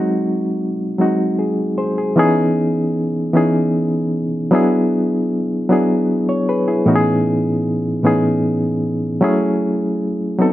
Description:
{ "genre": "R&B", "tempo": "51 BPM (dotted quarters)", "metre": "6/8", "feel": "straight", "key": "C# minor", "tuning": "A4 = 442 Hz", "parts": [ { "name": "barky reed electric piano", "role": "solo", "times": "0.0-10.5 s", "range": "A2 to C#5", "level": "-15 LUFS", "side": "equal", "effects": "overdrive, fast tremolo" } ], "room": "moderate studio reverb, RT60 0.6 s", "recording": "dark, warm production", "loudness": "-15 LUFS", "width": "side -14 dB against mid", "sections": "0.0-2.2 A section; 2.2-10.5 B section", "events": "none", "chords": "0.0 G#7; 2.2 C#m9; 4.5 E7; 6.9 Amaj9#11; 9.2 F#m7" }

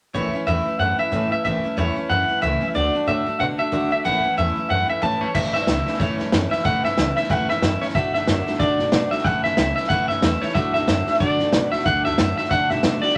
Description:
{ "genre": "rockabilly", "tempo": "184 BPM", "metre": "4/4", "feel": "swing 59% on 8ths", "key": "A major", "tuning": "A4 = 443 Hz", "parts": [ { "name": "electric guitar through a small old amp", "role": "melody", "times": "0.1-13.2 s", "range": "C#5 to A5", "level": "-24 LUFS", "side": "equal", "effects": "none" }, { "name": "picked steel-string acoustic guitar", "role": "accompaniment", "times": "0.1-13.2 s", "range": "A2 to F#4", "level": "-28 LUFS", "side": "equal", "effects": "none" }, { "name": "upright bass", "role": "bass", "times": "0.1-13.1 s", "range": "A1 to D3", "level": "-30 LUFS", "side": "equal", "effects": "none" }, { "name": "vintage drum kit", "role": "drums", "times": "5.3-13.2 s", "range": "crash cymbal, hi-hat, kick drum, snare drum", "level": "-25 LUFS", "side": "equal", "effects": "none" } ], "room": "moderate studio reverb, RT60 0.6 s", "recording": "none", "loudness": "-21 LUFS", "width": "mono", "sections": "0.1-5.3 A section; 5.3-13.2 B section", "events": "none", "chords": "0.1 A; 2.7 D; 4.0 A; 8.0 D; 9.3 A; 10.6 D" }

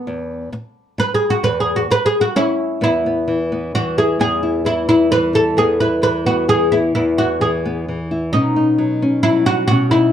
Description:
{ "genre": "acoustic folk duo or small band", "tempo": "131 BPM", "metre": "3/4", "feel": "straight", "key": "E major", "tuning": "A4 = 438 Hz", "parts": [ { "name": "oud", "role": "melody", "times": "0.0-10.1 s", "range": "B3 to B4", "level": "-16 LUFS", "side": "equal", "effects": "none" }, { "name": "nylon-string guitar", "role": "accompaniment", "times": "0.1-10.1 s", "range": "E2 to E4", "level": "-19 LUFS", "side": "equal", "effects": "none" } ], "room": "moderate studio reverb, RT60 0.5 s", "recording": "dark, warm production", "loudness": "-14 LUFS", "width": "side -10 dB against mid", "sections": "0.0-2.8 A section; 2.8-10.1 B section", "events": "oud solo 0.0-2.8", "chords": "0.1 E5; 8.3 Badd9" }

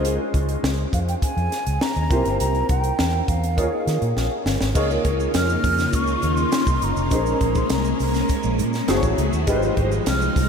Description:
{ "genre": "polished 1980s jazz-funk pop", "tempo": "102 BPM", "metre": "4/4", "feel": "straight", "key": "unclear", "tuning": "A4 = 440 Hz", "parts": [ { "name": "clear baby grand piano", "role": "accompaniment", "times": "0.0-10.5 s", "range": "Ab3 to Eb5", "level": "-25 LUFS", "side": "equal", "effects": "ensemble chorus" }, { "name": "vintage muted fingered electric bass", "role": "bass", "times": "0.0-10.5 s", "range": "F1 to Eb3", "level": "-24 LUFS", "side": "equal", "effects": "none" }, { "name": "crisp fusion drum kit", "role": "drums", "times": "0.0-10.5 s", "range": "crash cymbal, hi-hat, kick drum, snare drum", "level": "-25 LUFS", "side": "equal", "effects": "none" }, { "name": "mellow hollow concert flute", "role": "melody", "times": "0.9-10.5 s", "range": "F5 to F6", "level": "-28 LUFS", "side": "equal", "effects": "ping-pong delay" }, { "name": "phased string machine", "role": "sustained chords", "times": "4.8-10.5 s", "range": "Db3 to Ab4", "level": "-25 LUFS", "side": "equal", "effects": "ensemble chorus, phaser" }, { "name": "egg shaker", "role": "percussion", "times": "4.8-10.5 s", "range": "none", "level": "-40 LUFS", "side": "right 10 dB", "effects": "none" } ], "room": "wet cathedral reverb, RT60 5.0 s", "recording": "dreamy mix soaked in reverb", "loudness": "-19 LUFS", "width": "side -6 dB against mid", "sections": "0.0-4.8 A section; 4.8-10.5 B section", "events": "drum fill 4.2-4.8", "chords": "0.0 Dbmaj9; 2.1 C7; 3.6 Eb9sus4; 4.8 Db69; 7.1 Bbm11; 8.9 Gbm9; 9.5 Fm9/Ab" }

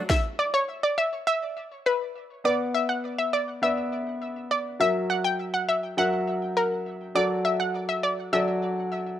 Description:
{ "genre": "dancehall", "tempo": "102 BPM", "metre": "4/4", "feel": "straight", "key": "B minor", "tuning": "A4 = 437 Hz", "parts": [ { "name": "warm grand piano", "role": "accompaniment", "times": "0.0-9.2 s", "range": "F#3 to F#5", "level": "-28 LUFS", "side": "left 1 dB", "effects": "sidechain pumping" }, { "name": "analog pluck", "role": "melody", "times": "0.1-8.7 s", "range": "A#4 to G5", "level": "-25 LUFS", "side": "equal", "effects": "chorus, tape echo" } ], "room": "light reverb", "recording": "dry, gritty hardware recording", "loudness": "-24 LUFS", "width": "side -11 dB against mid", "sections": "0.0-2.5 A section; 2.5-9.2 B section", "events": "none", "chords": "0.1 N.C.; 2.5 Bm; 4.8 F#7; 7.2 D/F#" }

